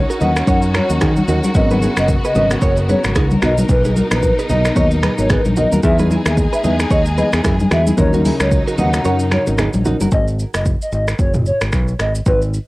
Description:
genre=afrobeats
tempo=112 BPM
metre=4/4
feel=swing 58% on 16ths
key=G# minor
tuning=A4 = 440 Hz
part: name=hollow clarinet-like synth lead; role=melody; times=0.0-12.4 s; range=B4 to F#5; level=-20 LUFS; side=equal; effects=chorus, cassette tape
part: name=warm studio string section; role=sustained chords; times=0.0-10.1 s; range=B2 to A#4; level=-24 LUFS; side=left 1 dB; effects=cassette tape
part: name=fingered electric bass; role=bass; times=0.0-12.6 s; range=F#1 to D#3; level=-18 LUFS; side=equal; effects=none
part: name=direct-recorded clean electric guitar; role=riff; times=0.1-10.1 s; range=D#4 to D#5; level=-24 LUFS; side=right 4 dB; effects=cassette tape, tape echo
part: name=deep house drum kit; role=drums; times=0.1-12.7 s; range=finger snaps, hi-hat, kick drum, rim click, shaker, toms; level=-19 LUFS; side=equal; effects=cassette tape
part: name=soft electric-piano-like synth keys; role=accompaniment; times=0.2-10.1 s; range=E3 to A#4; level=-22 LUFS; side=left 1 dB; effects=chorus, cassette tape
part: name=congas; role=percussion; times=0.2-10.1 s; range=none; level=-21 LUFS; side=left 1 dB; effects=none
room=little or no reverb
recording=home recording on cassette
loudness=-13 LUFS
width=side -20 dB against mid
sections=0.0-10.1 A section; 10.1-12.7 B section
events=kick muted 9.0-10.1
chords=0.0 D#m7; 1.5 G#m11; 3.4 Bmaj7; 5.8 Emaj7; 8.0 D#m7; 10.1 G#7(no3)

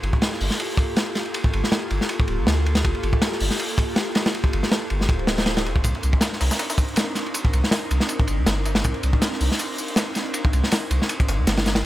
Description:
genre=drum and bass, jungle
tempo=160 BPM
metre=4/4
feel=swing 54% on 16ths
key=C minor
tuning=A4 = 440 Hz
part: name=airy breathy pad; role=sustained chords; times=0.0-11.8 s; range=Bb3 to Bb4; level=-29 LUFS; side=equal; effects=chorus, vintage 12-bit sampler grit
part: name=soft dub sub bass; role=bass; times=0.0-11.8 s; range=D1 to Eb2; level=-23 LUFS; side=equal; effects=none
part: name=crunchy breakbeat drum kit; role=drums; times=0.0-11.8 s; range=hi-hat, kick drum, ride cymbal, snare drum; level=-21 LUFS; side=equal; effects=none
part: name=swell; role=sound effects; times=5.2-5.8 s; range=none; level=-34 LUFS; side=right 2 dB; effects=none
part: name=breakbeat sampler-style drum kit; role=drums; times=5.8-11.8 s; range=hi-hat, snare drum, tambourine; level=-31 LUFS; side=left 1 dB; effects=high-pass filter on perc, high-pass filter on snare, high-pass filter on hats, high-pass filter on room
room=little or no reverb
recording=none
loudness=-20 LUFS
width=side -15 dB against mid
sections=0.0-11.9 A section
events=swell 5.2-5.8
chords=0.0 Gm9; 5.8 Cm9

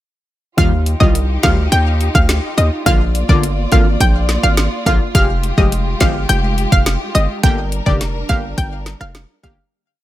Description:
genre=dancehall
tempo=105 BPM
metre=4/4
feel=straight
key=Eb major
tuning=A4 = 440 Hz
part: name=analog pluck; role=melody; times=0.6-9.5 s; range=D5 to G5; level=-20 LUFS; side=equal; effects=chorus, ping-pong delay
part: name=synth brass stab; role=accompaniment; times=0.6-9.6 s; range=D3 to G4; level=-21 LUFS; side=left 2 dB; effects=chorus, sidechain pumping
part: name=warm studio string section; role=sustained chords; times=0.6-9.7 s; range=G3 to D5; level=-25 LUFS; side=left 1 dB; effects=sidechain pumping
part: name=hard-hitting 808-style bass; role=bass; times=0.6-9.6 s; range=F1 to Eb2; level=-17 LUFS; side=equal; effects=none
part: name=afro-pop drum kit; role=drums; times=0.6-9.6 s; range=hi-hat, kick drum, rim click, snare drum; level=-16 LUFS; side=equal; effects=none
room=digital ambience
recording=none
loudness=-12 LUFS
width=side -14 dB against mid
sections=0.6-9.7 chorus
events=fade-out 7.4-9.7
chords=0.6 Ebadd9; 2.9 Bb; 5.1 Fmadd9; 7.4 Gm

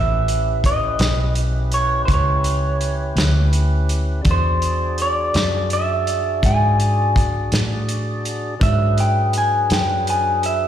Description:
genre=slow blues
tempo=55 BPM (dotted quarters)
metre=12/8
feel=straight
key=unclear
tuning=A4 = 439 Hz
part: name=electric guitar through a small old amp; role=melody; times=0.0-10.7 s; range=C5 to G#5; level=-20 LUFS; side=equal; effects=slapback echo
part: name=tonewheel organ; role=sustained chords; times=0.0-10.7 s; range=F#3 to D5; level=-28 LUFS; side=left 1 dB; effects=slow rotary speaker
part: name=vintage muted fingered electric bass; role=bass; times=0.0-10.7 s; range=A1 to A2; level=-20 LUFS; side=equal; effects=none
part: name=warm soul drum kit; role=drums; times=0.3-10.6 s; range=hi-hat, kick drum, snare drum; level=-22 LUFS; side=equal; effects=none
room=studio reverb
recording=live gig heard through the venue's PA, recital hall reverb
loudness=-16 LUFS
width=side -10 dB against mid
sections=0.0-10.7 A section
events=none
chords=0.0 A7; 4.3 E7

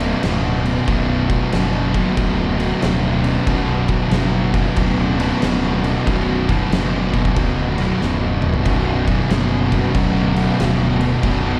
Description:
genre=stoner and doom metal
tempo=93 BPM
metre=4/4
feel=swing 65% on 8ths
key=B minor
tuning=A4 = 440 Hz
part: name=swarming drone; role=sustained chords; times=4.3-11.6 s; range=D3 to B3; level=-34 LUFS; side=equal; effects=none
part: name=fuzz guitar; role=riff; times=0.0-11.6 s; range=B1 to B2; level=-25 LUFS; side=equal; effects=distortion
part: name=thick fuzz guitar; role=riff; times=0.0-11.6 s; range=B1 to B2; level=-26 LUFS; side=equal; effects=distortion
part: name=thick fuzz guitar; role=riff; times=0.0-11.6 s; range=B1 to B2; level=-25 LUFS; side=equal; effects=distortion
part: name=fuzz fingered electric bass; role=bass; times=0.0-11.6 s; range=B0 to F#1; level=-25 LUFS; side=equal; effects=overdrive
part: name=oversized low-tuned drum kit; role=drums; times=0.0-11.4 s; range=crash cymbal, kick drum, snare drum, toms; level=-24 LUFS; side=equal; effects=none
room=moderate concert hall reverb, RT60 2.0 s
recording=dark, warm production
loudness=-18 LUFS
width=mono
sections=0.0-11.6 A section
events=drum fill 8.0-8.7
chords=0.0 Bm

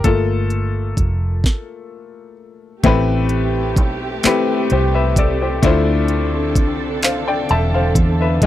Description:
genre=slow six-eight R&B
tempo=43 BPM (dotted quarters)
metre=6/8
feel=straight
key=A phrygian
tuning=A4 = 440 Hz
part: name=bright baby grand piano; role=accompaniment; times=0.0-8.5 s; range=Ab3 to A5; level=-19 LUFS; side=left 4 dB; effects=none
part: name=smooth R&B drum kit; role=drums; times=0.0-8.5 s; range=handclaps, hi-hat, kick drum, snare drum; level=-16 LUFS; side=right 1 dB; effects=none
part: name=vintage muted fingered electric bass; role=bass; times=0.1-8.5 s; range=E1 to F2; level=-19 LUFS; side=right 1 dB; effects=none
part: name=dark studio string section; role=sustained chords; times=2.8-8.5 s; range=D3 to G5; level=-23 LUFS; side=right 3 dB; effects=none
room=little or no reverb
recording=dry, close 1970s-style studio recording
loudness=-15 LUFS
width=side -13 dB against mid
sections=0.0-2.8 A section; 2.8-8.5 B section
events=grand piano solo 0.0-2.8; stop 1.4-2.8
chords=0.0 Gm9; 2.8 Am9; 5.6 Dm9

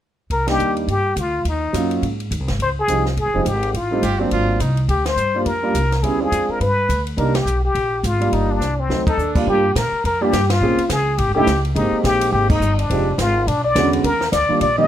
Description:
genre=jazz, small-group swing and bop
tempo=210 BPM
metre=4/4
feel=swing 60% on 8ths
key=C minor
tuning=A4 = 440 Hz
part: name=trumpet with plunger mute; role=melody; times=0.3-14.9 s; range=C4 to Eb5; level=-20 LUFS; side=left 2 dB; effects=none
part: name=upright bass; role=bass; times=0.3-14.9 s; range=E1 to Bb2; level=-22 LUFS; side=equal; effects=none
part: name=compact cocktail drum kit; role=drums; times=0.3-14.7 s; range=crash cymbal, hi-hat, kick drum, ride cymbal, snare drum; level=-26 LUFS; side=equal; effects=none
part: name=warm baby grand piano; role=accompaniment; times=0.5-14.9 s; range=D3 to Ab4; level=-21 LUFS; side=right 2 dB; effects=none
part: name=bright trumpet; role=second line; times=4.0-4.8, 9.1-9.5 s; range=C4 to G4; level=-24 LUFS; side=right 4 dB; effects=none
room=light reverb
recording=none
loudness=-16 LUFS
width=side -11 dB against mid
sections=0.3-9.5 A section; 9.5-14.9 B section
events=band accent 0.4, 5.0, 7.3, 9.0, 10.5, 12.5; drum fill 8.6-9.2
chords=0.3 Cm9; 1.4 Ebm7; 2.0 Ab; 2.6 Dbmaj9#11; 3.7 Am7b5; 4.3 Ab13; 4.9 Gm7; 6.0 Dm7b5; 6.6 G; 7.2 C7sus2; 8.9 D7b9; 9.5 Gm7; 10.6 Bbm7; 11.2 A7#11; 11.8 Abmaj9; 12.9 Fm7; 13.5 E13; 14.0 Ebmaj7

